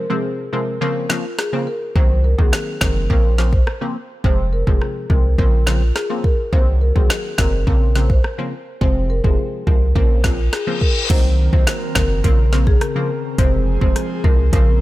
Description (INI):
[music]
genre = dancehall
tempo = 105 BPM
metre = 4/4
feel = straight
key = Bb minor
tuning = A4 = 440 Hz
[part]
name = marimba with medium mallets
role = melody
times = 0.0-14.6 s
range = F4 to C5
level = -25 LUFS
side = left 1 dB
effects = none
[part]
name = punchy chord stab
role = accompaniment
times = 0.0-14.8 s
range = C3 to C4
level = -24 LUFS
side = left 1 dB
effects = chorus
[part]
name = afro-pop drum kit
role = drums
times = 1.1-14.7 s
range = crash cymbal, hi-hat, kick drum, rim click, snare drum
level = -18 LUFS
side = equal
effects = none
[part]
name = punchy sub bass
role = bass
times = 2.0-14.8 s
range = F1 to C2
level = -17 LUFS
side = equal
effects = none
[part]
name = reverse cymbal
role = sound effects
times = 10.4-11.1 s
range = none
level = -26 LUFS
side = left 5 dB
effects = none
[part]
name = airy breathy pad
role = sustained chords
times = 11.1-14.8 s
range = Db3 to Bb4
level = -26 LUFS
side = left 1 dB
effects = chorus, sidechain pumping
[sound]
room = little or no reverb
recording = none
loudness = -15 LUFS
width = side -17 dB against mid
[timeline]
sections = 0.0-11.1 A section; 11.1-14.8 B section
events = break 0.0-2.0; reverse cymbal 10.4-11.1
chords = 0.0 Fm; 0.8 Bbmadd9; 2.0 Cm7b5; 3.1 Bbmadd9; 4.2 Fm; 5.4 Bbmadd9; 6.5 Cm7b5; 7.7 Bbmadd9; 8.8 Fm; 10.0 Bbmadd9; 11.1 Cm7b5; 12.2 Bbmadd9; 13.4 Fm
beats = 0.24 0.81 1.39 | 1.96 2.53 3.10 3.67 | 4.24 4.81 5.38 5.96 | 6.53 7.10 7.67 8.24 | 8.81 9.38 9.96 10.53 | 11.10 11.67 12.24 12.81 | 13.38 13.96 14.53